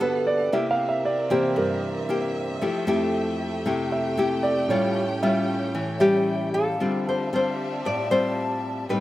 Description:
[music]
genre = bossa nova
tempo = 115 BPM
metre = 4/4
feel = straight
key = D minor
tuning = A4 = 440 Hz
[part]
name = nylon-string guitar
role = accompaniment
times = 0.0-9.0 s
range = G2 to A4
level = -26 LUFS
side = left 2 dB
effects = slapback echo
[part]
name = warm concert grand piano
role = accompaniment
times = 0.0-6.8 s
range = F2 to G5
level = -26 LUFS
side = right 2 dB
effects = slapback echo
[part]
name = rich studio violin section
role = sustained chords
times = 0.0-9.0 s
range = A3 to A5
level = -33 LUFS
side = right 1 dB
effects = none
[part]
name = nylon-string guitar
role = melody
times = 6.0-9.0 s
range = G4 to D5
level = -24 LUFS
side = left 1 dB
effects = none
[part]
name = breathy mellow large flute ensemble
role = second line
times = 6.0-9.0 s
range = E5 to A5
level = -32 LUFS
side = left 2 dB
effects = none
[sound]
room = little or no reverb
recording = recorded outdoors, with no room sound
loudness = -22 LUFS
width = side -15 dB against mid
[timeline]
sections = 0.0-6.8 A section; 6.8-9.0 B section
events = grand piano solo 0.0-6.8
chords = 0.0 Gmaj9; 0.5 C7; 2.6 Fmaj9; 4.7 A7b13; 6.8 Dm11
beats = 0.00 | 0.52 1.05 1.57 2.09 | 2.61 3.14 3.66 4.18 | 4.71 5.23 5.75 6.28 | 6.80 7.32 7.85 8.37 | 8.89

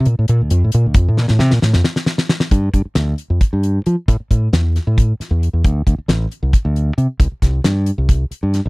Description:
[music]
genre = electric jazz fusion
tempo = 269 BPM (eighths)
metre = 7/8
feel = straight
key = G minor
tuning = A4 = 440 Hz
[part]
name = modern bright fingered electric bass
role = bass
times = 0.0-8.7 s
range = A1 to F3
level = -15 LUFS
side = equal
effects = none
[part]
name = damped 70s drum kit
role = drums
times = 0.1-8.6 s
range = hi-hat, kick drum, snare drum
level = -16 LUFS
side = equal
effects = none
[sound]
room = little or no reverb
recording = dry, close 1970s-style studio recording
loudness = -14 LUFS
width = side -26 dB against mid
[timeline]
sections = 0.0-2.5 A section; 2.5-8.7 B section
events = fingered electric bass solo 0.0-2.5; drum fill 1.2-2.5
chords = none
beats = 0.07 0.29 0.52 0.74 | 0.96 1.18 1.41 1.63 1.85 2.07 2.30 | 2.52 2.74 2.96 3.19 3.41 3.63 3.86 | 4.08 4.30 4.53 4.75 4.97 5.19 5.42 | 5.64 5.86 6.09 6.31 6.53 6.75 6.98 | 7.20 7.42 7.65 7.87 8.09 8.31 8.54

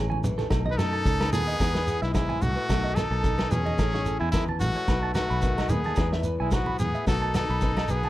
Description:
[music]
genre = highlife guitar band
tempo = 110 BPM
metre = 4/4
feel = swing 54% on 16ths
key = E major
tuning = A4 = 440 Hz
[part]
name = nylon-string guitar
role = accompaniment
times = 0.0-8.1 s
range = E2 to G#4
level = -35 LUFS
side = left 5 dB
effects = none
[part]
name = clean electric guitar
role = arpeggios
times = 0.0-8.1 s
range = G#4 to B5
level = -34 LUFS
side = right 6 dB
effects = tape echo
[part]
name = fingered electric bass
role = bass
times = 0.0-8.1 s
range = A1 to F#2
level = -28 LUFS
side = equal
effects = none
[part]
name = congas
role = percussion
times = 0.1-8.1 s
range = none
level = -32 LUFS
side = right 1 dB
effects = none
[part]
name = shekere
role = percussion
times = 0.2-8.1 s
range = none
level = -34 LUFS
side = right 1 dB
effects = none
[part]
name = vintage drum kit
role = drums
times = 0.4-7.9 s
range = kick drum, snare drum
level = -28 LUFS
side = equal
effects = none
[part]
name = agogo bells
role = percussion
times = 0.5-7.9 s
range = none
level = -40 LUFS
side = right 3 dB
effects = none
[part]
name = brilliant trumpet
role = melody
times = 0.7-8.1 s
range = E4 to B4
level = -29 LUFS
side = equal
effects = none
[part]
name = bright trumpet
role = second line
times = 0.7-8.1 s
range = G#3 to D#4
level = -37 LUFS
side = left 6 dB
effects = none
[sound]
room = studio ambience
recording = none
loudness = -23 LUFS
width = side -15 dB against mid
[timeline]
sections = 0.0-1.6 A section; 1.6-8.1 B section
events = none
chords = 0.0 Amaj7; 0.5 B7; 1.6 E; 2.7 B7; 3.8 Amaj7; 4.9 B7; 6.0 E; 7.1 B7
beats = 0.50 1.05 | 1.60 2.15 2.69 3.24 | 3.79 4.33 4.88 5.43 | 5.97 6.52 7.07 7.62

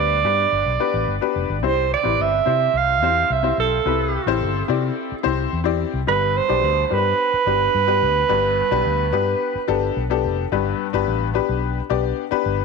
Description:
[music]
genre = uptempo 1960s-style soul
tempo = 108 BPM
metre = 4/4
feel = straight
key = unclear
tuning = A4 = 440 Hz
[part]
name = clear alto saxophone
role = melody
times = 0.0-10.0 s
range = A4 to F5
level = -20 LUFS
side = right 9 dB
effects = tape echo
[part]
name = bright upright piano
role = accompaniment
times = 0.0-12.6 s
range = G2 to D5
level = -22 LUFS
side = left 14 dB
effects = none
[part]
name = vintage muted fingered electric bass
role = bass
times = 0.0-12.6 s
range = F1 to C3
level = -25 LUFS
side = left 2 dB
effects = none
[sound]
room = moderate echo chamber reverb, RT60 1.8 s, small room ambience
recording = 1960s-style stereo with parts hard left and right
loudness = -18 LUFS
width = side -4 dB against mid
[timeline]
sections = 0.0-10.5 A section; 10.5-12.6 B section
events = none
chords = 0.0 G; 1.6 C; 6.1 G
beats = 0.53 1.08 | 1.64 2.19 2.75 3.30 | 3.86 4.41 4.97 5.52 | 6.08 6.63 7.19 7.74 | 8.30 8.85 9.41 9.96 | 10.52 11.07 11.63 12.18

